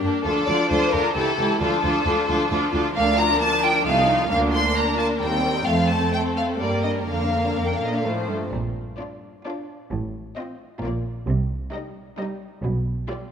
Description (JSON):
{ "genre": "quick classical-period movement for string orchestra", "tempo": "132 BPM", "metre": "3/4", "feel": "rubato", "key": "Bb major", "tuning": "A4 = 436 Hz", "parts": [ { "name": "rich studio violin section", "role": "second line", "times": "0.0-13.3 s", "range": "G3 to C5", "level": "-27 LUFS", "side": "left 2 dB", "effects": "none" }, { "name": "rich studio viola section", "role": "accompaniment", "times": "0.0-13.3 s", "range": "D3 to E4", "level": "-26 LUFS", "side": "right 1 dB", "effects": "none" }, { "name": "rich symphonic cello section", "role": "bass", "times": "0.0-13.0 s", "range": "C2 to C3", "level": "-27 LUFS", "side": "right 2 dB", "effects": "none" }, { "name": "rich studio violin section", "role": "melody", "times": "0.2-13.3 s", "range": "A4 to C6", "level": "-23 LUFS", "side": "left 2 dB", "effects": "none" }, { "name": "rich studio double bass section", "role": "bass", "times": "8.5-13.0 s", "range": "A1 to C2", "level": "-27 LUFS", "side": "right 2 dB", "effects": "none" } ], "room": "moderate scoring stage reverb, RT60 2.1 s", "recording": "none", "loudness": "-20 LUFS", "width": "side -7 dB against mid", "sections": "0.0-8.5 A section; 8.5-13.3 B section", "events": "none", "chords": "0.2 Dm; 1.2 A7; 1.6 Dm; 3.9 F7/C; 4.3 Bb/D; 5.2 Cm7/Eb; 5.7 F; 6.6 Gm; 7.1 Bb/F; 8.0 F/A; 8.5 Bb; 9.9 F7/A; 10.8 Bb; 11.3 Cm; 12.6 G7/B", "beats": "| 0.25 0.71 1.16 | 1.61 2.06 2.51 | 2.96 3.41 3.85 | 4.30 4.76 5.21 | 5.67 6.12 6.59 | 7.08 7.56 8.04 | 8.53 8.99 9.46 | 9.91 10.37 10.83 | 11.28 11.73 12.18 | 12.63 13.08" }